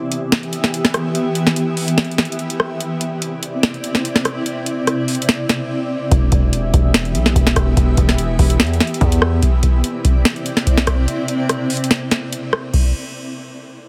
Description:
hip hop, trap; 145 BPM; 4/4; half-time; A4 = 440 Hz
granular cloud pad; sustained chords; 0.0-12.7 s; C3 to E5; -24 LUFS; equal; built-in reverb
booming analog drum machine; drums; 0.1-12.9 s; crash cymbal, hi-hat, kick drum, rim click, snare drum; -19 LUFS; equal
distorted 808-style bass; bass; 6.1-9.4 s; E1 to E2; -20 LUFS; equal; distortion
little or no reverb; heavily compressed radio sound; -17 LUFS; mono
0.0-12.7 A section; 12.7-13.9 B section
break 0.0-6.1, 11.1-12.7
0.0 Em; 2.8 Cadd9; 6.1 Em; 9.4 Cadd9; 12.7 N.C.

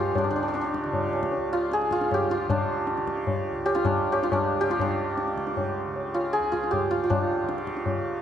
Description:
indian classical, Hindustani; 156 BPM; 3/4; straight; A4 = 440 Hz
santur; melody; 0.0-8.2 s; D4 to Ab4; -25 LUFS; right 1 dB
tanpura; drone; 0.0-8.2 s; Db2 to Db3; -35 LUFS; right 2 dB
tabla; percussion; 0.2-8.0 s; -29 LUFS; left 3 dB
moderate concert hall reverb, RT60 1.8 s; nothing above 10.6 kHz; -24 LUFS; side -9 dB against mid
0.0-4.8 A section; 4.8-8.2 A section

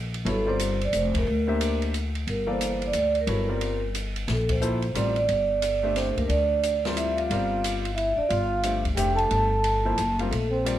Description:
modal jazz; 179 BPM; 3/4; swing 64% on 8ths; G dorian; A4 = 440 Hz
upright bass; bass; 0.0-10.8 s; F1 to D2; -28 LUFS; left 1 dB
open jazz drum kit; drums; 0.1-10.8 s; hi-hat, kick drum, ride cymbal, snare drum; -33 LUFS; right 1 dB
warm concert grand piano; accompaniment; 0.2-10.8 s; E3 to F5; -31 LUFS; left 2 dB
vibraphone with soft mallets; melody; 0.3-10.8 s; A4 to A5; -26 LUFS; right 2 dB; plate reverb
breathy trombone; second line; 5.9-10.8 s; A3 to A4; -31 LUFS; right 2 dB
light reverb; -23 LUFS; side -12 dB against mid
0.0-10.8 A section
band accent 1.1, 4.5
0.0 Gm9

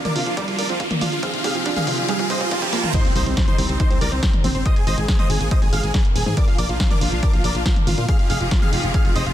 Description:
uplifting trance; 140 BPM; 4/4; straight; C minor; A4 = 440 Hz
dense compressed supersaw; melody; 0.0-9.3 s; C4 to F5; -26 LUFS; right 1 dB; sidechain pumping, digital delay
plucky unison lead; second line; 0.0-9.3 s; C5 to F6; -32 LUFS; left 1 dB; sidechain pumping, digital delay
clear symphonic string section; sustained chords; 0.0-9.3 s; F3 to Ab4; -30 LUFS; equal; sidechain pumping
riser, reverse cymbal and impact; sound effects; 0.0-4.7 s; -27 LUFS; equal
analog pluck; arpeggios; 0.1-2.8 s; C3 to G4; -28 LUFS; right 5 dB; chorus, sidechain pumping, digital delay
punchy analog drum machine; drums; 0.1-9.3 s; crash cymbal, hi-hat, snare drum, toms; -27 LUFS; equal
solid FM bass; bass; 0.2-9.3 s; Eb1 to Bb2; -24 LUFS; equal; sidechain pumping, high-pass filter
electronic kick drum; drums; 0.4-9.0 s; -20 LUFS; equal; high-pass filter on kick, high-pass filter on room
light reverb; dense, heavily limited modern master; -17 LUFS; side -12 dB against mid
0.0-2.9 A section; 2.9-9.3 B section
build-up 0.0-2.9; drum fill 0.0-2.9; riser 0.0-2.9; filter sweep on synth pluck 0.0-2.9; reverse cymbal 2.1-2.9; drop 2.9-9.3; impact 2.9-4.7
0.0 Bb; 1.2 Fm7; 2.9 Cm; 4.7 Abadd9; 6.4 Bb; 8.1 Fm7

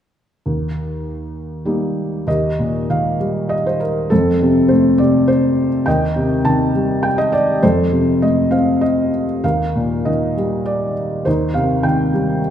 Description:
classical, lyrical solo piano; 101 BPM; 3/4; rubato; Eb lydian; A4 = 441 Hz
felt-muted upright piano; solo; 0.5-12.5 s; Eb2 to A5; -15 LUFS; equal
moderate scoring stage reverb, RT60 1.8 s; recorded in a church or concert hall; -15 LUFS; side -9 dB against mid
0.5-2.3 A section; 2.3-12.5 B section
0.5 Eb; 4.1 F; 5.9 Cm/Eb; 7.6 F; 9.4 Eb; 11.3 Cm/Eb

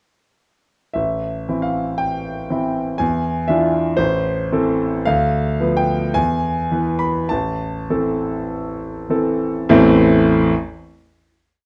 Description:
classical, romantic character piece for solo piano; 49-62 BPM; 2/4; rubato; A minor; A4 = 440 Hz
bright concert grand piano; solo; 0.9-10.5 s; A1 to B5; -19 LUFS; equal
moderate large studio reverb, RT60 0.8 s; worn, warbling old tape, cassette tape, warbly pitch drift; -19 LUFS; mono
1.0-9.7 A section; 9.7-11.7 final chord
slowing down 4.0-9.7
1.0 Am; 3.0 E7b9; 4.0 Am; 5.1 Bdim/D; 6.1 E; 7.3 Am

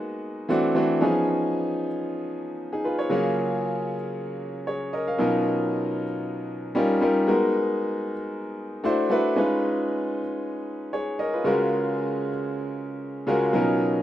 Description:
amapiano; 115 BPM; 4/4; swing 55% on 16ths; A4 = 440 Hz
clear concert grand piano; solo; 0.0-14.0 s; B2 to E#5; -23 LUFS; equal; digital delay
light reverb, small room ambience; rough home demo mix; -23 LUFS; side -12 dB against mid
0.0-14.0 A section
0.5 D9; 1.0 C#9; 3.1 F#maj7/C#; 5.2 Bmaj9#11; 6.8 D#7; 7.3 G#m9; 8.8 D9; 9.4 C#9; 11.5 F#maj7/C#

